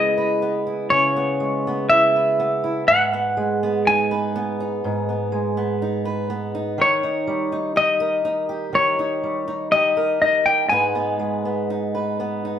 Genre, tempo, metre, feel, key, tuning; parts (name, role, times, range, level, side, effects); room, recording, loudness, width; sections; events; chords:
acoustic folk-pop ballad; 61 BPM; 4/4; straight; G# minor; A4 = 440 Hz
semi-hollow electric guitar; melody; 0.0-12.6 s; C#5 to G#5; -18 LUFS; left 1 dB; harmonic tremolo
fingerpicked steel-string acoustic guitar; accompaniment; 0.0-12.6 s; G#2 to B4; -23 LUFS; right 2 dB
moderate large studio reverb, RT60 0.9 s; band playing live in one room; -18 LUFS; side -9 dB against mid
0.0-12.6 A section
0.0 C#m7; 2.9 G#m; 6.8 D#; 10.7 G#m